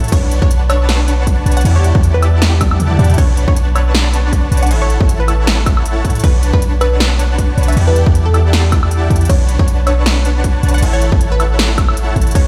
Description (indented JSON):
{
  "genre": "future bass",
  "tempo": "157 BPM",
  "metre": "4/4",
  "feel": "swing 56% on 16ths, half-time",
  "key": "B minor",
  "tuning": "A4 = 440 Hz",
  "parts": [
    { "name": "dense compressed supersaw", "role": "riff", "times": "0.0-12.5 s", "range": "D4 to A5", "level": "-23 LUFS", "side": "equal", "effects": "sidechain pumping, digital delay" },
    { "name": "warm 808-style bass", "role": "bass", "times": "0.0-12.5 s", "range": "A1 to A2", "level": "-15 LUFS", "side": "equal", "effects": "sidechain pumping" },
    { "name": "big-room dance drum kit", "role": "drums", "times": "0.0-12.4 s", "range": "crash cymbal, hi-hat, snare drum, toms, woodblock", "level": "-22 LUFS", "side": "equal", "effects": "none" },
    { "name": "unison pluck", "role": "melody", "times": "0.1-12.5 s", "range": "A4 to F#5", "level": "-25 LUFS", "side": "equal", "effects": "sidechain pumping, digital delay" },
    { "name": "electronic kick drum", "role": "drums", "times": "0.1-12.4 s", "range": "none", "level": "-16 LUFS", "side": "equal", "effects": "none" }
  ],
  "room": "light reverb",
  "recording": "played on a big sound system in a bare room, stone room reverb",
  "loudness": "-13 LUFS",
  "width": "mono",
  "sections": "0.0-12.5 A section",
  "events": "drum fill 2.6-3.2; kick drops out 2.8-3.2",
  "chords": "0.1 Bm9; 1.7 Em11; 3.2 Bm9; 4.7 F#m7/A; 6.2 Bm9; 7.8 Em11; 9.3 Bm9; 10.8 F#m7/A"
}